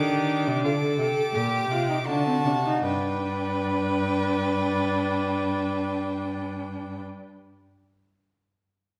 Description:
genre	classical, baroque-style fugue for string quartet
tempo	75-91 BPM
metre	3/4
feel	straight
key	unclear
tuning	A4 = 436 Hz
part	rich violin	melody	0.0-7.0 s	G5 to D6	-37 LUFS	equal	none
part	warm violin	second line	0.0-7.0 s	F4 to B4	-32 LUFS	equal	none
part	rich viola	accompaniment	0.0-7.0 s	C4 to A4	-30 LUFS	equal	none
part	rich cello	bass	0.0-7.0 s	G2 to Eb3	-32 LUFS	equal	none
room	wet recital hall reverb, RT60 1.4 s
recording	none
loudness	-26 LUFS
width	mono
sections	0.0-2.8 A section; 2.8-7.6 B section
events	slowing down 0.0-2.8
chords	0.0 Cmadd9; 0.6 Gm; 2.1 D7; 2.8 G

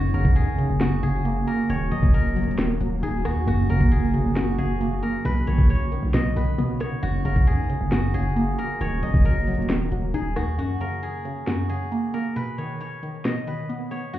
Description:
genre	hip hop, trap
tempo	135 BPM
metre	4/4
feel	half-time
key	F# major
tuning	A4 = 439 Hz
part	steel-string zither	melody	0.0-14.2 s	F#4 to D#5	-30 LUFS	left 1 dB	digital delay
part	glassy wavetable pluck	accompaniment	0.0-14.2 s	F#2 to D#4	-27 LUFS	equal	chorus
part	granular cloud pad	sustained chords	0.0-10.6 s	C#3 to F#4	-30 LUFS	right 1 dB	built-in reverb
part	distorted 808-style bass	bass	0.0-10.6 s	D#1 to B2	-25 LUFS	equal	distortion
part	trap drum kit	drums	0.1-14.2 s	hi-hat, kick drum, rim click, snare drum	-20 LUFS	equal	vintage 12-bit sampler grit
room	digital ambience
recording	heard muffled through a wall, club reverb, EQ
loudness	-21 LUFS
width	side -13 dB against mid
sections	0.0-10.6 A section; 10.6-14.2 B section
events	break 10.6-14.2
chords	0.0 F#; 1.7 D#m; 3.5 F#; 5.3 Badd9; 7.0 F#; 8.8 D#m; 10.6 F#; 12.4 Badd9

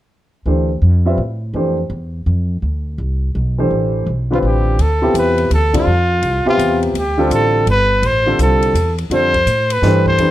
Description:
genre	modal jazz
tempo	167 BPM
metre	3/4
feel	swing 65% on 8ths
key	D dorian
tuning	A4 = 444 Hz
part	warm grand piano	accompaniment	0.5-10.3 s	C3 to E5	-17 LUFS	equal	none
part	upright bass	bass	0.5-10.3 s	G1 to A2	-17 LUFS	equal	none
part	warm trumpet	melody	4.3-10.3 s	F4 to C5	-16 LUFS	equal	none
part	compact cocktail drum kit	drums	4.8-10.3 s	hi-hat, kick drum, ride cymbal, snare drum	-28 LUFS	left 2 dB	none
room	light reverb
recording	none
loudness	-13 LUFS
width	side -14 dB against mid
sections	0.5-4.8 A section; 4.8-10.3 B section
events	band accent 5.7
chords	0.5 Dm7

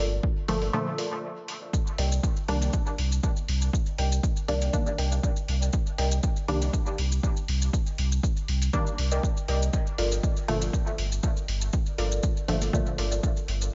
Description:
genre	dub techno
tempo	120 BPM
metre	4/4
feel	swing 53% on 16ths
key	C minor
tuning	A4 = 440 Hz
part	warbly dusty pluck	riff	0.0-13.2 s	F4 to G5	-38 LUFS	equal	chorus, sidechain pumping, dub echo
part	filtered dub chord stab	stabs	0.0-13.0 s	Bb2 to D4	-34 LUFS	equal	chorus, phaser, sidechain pumping, dub echo
part	warm sub bass	bass	0.0-13.7 s	G1 to C2	-28 LUFS	equal	sidechain pumping
part	electronic kick drum	drums	0.2-13.3 s	none	-29 LUFS	equal	small room reverb
part	electronic hi-hat	drums	0.5-13.6 s	none	-39 LUFS	equal	overdrive, small room reverb
part	maracas	percussion	1.7-13.7 s	none	-40 LUFS	equal	none
room	light reverb, digital ambience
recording	nothing above 7.6 kHz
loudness	-27 LUFS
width	mono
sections	0.0-13.7 A section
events	break 0.7-1.7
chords	0.0 Gm7; 1.7 Cm7; 9.7 Gm7

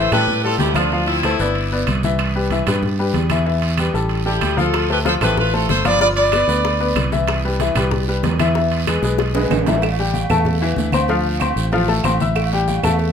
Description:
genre	latin, salsa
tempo	189 BPM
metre	4/4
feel	straight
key	A minor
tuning	A4 = 440 Hz
part	brilliant horn section	melody	0.0-2.0, 4.3-7.1 s	C4 to D5	-19 LUFS	equal	none
part	bright baby grand piano	accompaniment	0.0-13.1 s	E3 to E6	-21 LUFS	left 4 dB	none
part	fingered electric bass	bass	0.0-13.1 s	G1 to A2	-20 LUFS	right 1 dB	none
part	claves	percussion	0.1-13.0 s	none	-30 LUFS	right 9 dB	none
part	congas	percussion	0.1-13.1 s	none	-27 LUFS	left 2 dB	none
part	guiro	percussion	0.1-13.1 s	none	-33 LUFS	right 9 dB	none
part	timbales and agogo bells	percussion	0.1-13.0 s	none	-26 LUFS	right 6 dB	none
part	bongos and cowbell	percussion	4.7-13.1 s	none	-28 LUFS	left 7 dB	none
room	light reverb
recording	minimal, uncompressed stereo recording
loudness	-15 LUFS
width	side -7 dB against mid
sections	0.0-9.8 A section; 9.8-13.1 B section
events	drum fill 9.0-9.8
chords	0.0 Asus2; 0.9 Dm9; 1.6 G6; 2.2 Cmaj7; 3.5 Em; 4.1 A5; 4.7 Dm7; 6.0 G7; 7.3 Cmaj7; 8.6 E; 9.8 Am7; 11.1 Dm9; 12.4 A7(no3)

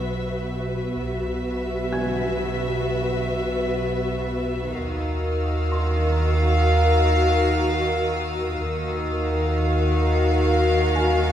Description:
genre	cinematic, suspense film score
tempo	63 BPM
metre	4/4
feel	straight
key	unclear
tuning	A4 = 441 Hz
part	warm symphonic violin section	melody	0.0-11.3 s	E5 to E#5	-28 LUFS	equal	none
part	dark chamber violin section	second line	0.0-11.3 s	A#4 to B4	-30 LUFS	left 1 dB	none
part	dark studio viola section	accompaniment	0.0-11.3 s	F#4	-28 LUFS	left 2 dB	none
part	dark chamber double bass section	bass	0.0-11.3 s	B1 to D#2	-30 LUFS	right 2 dB	none
part	warm symphonic cello section	bass	0.0-11.3 s	B2 to D#3	-29 LUFS	right 2 dB	none
part	soft dub sub bass	drone	0.0-11.3 s	B1 to D#2	-25 LUFS	equal	none
part	felt-muted upright piano	texture	0.0-11.3 s	G#5 to G#6	-36 LUFS	left 1 dB	none
part	warm chamber violin section	texture	4.8-11.3 s	D#6 to E6	-34 LUFS	left 3 dB	none
room	wet recital hall reverb, RT60 1.7 s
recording	recorded in a church or concert hall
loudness	-20 LUFS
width	side -10 dB against mid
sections	0.0-11.3 A section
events	none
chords	0.0 Bsus4; 4.8 D#madd9

